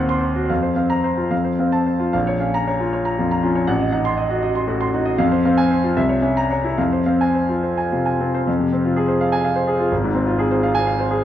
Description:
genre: classical, romantic character piece for solo piano.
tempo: 69-85 BPM (dotted quarters).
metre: 6/8.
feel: rubato.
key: F minor from 5.2 s.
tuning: A4 = 440 Hz.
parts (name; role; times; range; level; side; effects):
clear concert grand piano; solo; 0.0-11.2 s; Ab1 to C6; -17 LUFS; equal; none.
room: wet recital hall reverb, RT60 1.7 s.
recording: dark, warm production.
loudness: -17 LUFS.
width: side -11 dB against mid.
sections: 0.0-8.5 A section; 8.5-11.2 B section.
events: none.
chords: 0.5 Fsus4; 1.3 F; 2.1 Bbm; 3.7 Adim7; 5.2 Fm; 6.0 C7b9; 6.8 Fm; 9.9 Fm/Ab.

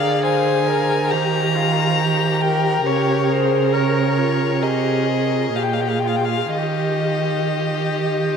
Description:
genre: classical, slow romantic movement for string quartet.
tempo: 51-70 BPM.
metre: 4/4.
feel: rubato.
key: Eb major.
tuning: A4 = 441 Hz.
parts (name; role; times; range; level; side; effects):
rich violin; melody; 0.0-8.4 s; Bb4 to Bb5; -22 LUFS; left 6 dB; none.
warm violin; second line; 0.0-8.4 s; F4 to D5; -24 LUFS; left 3 dB; none.
warm viola; accompaniment; 0.0-8.4 s; F4 to Bb4; -24 LUFS; right 1 dB; none.
rich cello; bass; 0.0-8.4 s; Bb2 to Eb3; -22 LUFS; right 6 dB; none.
room: wet huge ambient reverb, RT60 9.3 s.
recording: in a vast, echoing space.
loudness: -17 LUFS.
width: side -6 dB against mid.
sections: 0.0-8.4 A section.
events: none.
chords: 0.0 Dm7b5; 1.1 Eb; 2.9 Db6; 4.6 Ab/C; 5.5 Bb5; 6.6 Eb.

